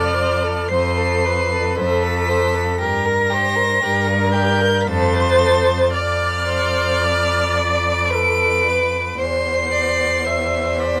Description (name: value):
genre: classical, slow romantic movement for string quartet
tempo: 56 BPM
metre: 3/4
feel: rubato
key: unclear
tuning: A4 = 444 Hz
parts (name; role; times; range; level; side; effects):
- rich violin; melody; 0.0-11.0 s; F6 to D7; -24 LUFS; equal; none
- clear violin; second line; 0.0-11.0 s; G4 to D5; -24 LUFS; equal; none
- rich viola; accompaniment; 0.0-11.0 s; A4 to E5; -24 LUFS; equal; none
- clear cello; bass; 0.0-11.0 s; E2 to G2; -24 LUFS; equal; none
room: light reverb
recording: none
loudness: -18 LUFS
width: mono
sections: 0.0-11.0 A section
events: none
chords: 0.0 F; 2.8 Gmadd11; 4.9 F; 5.9 F6; 9.2 C/E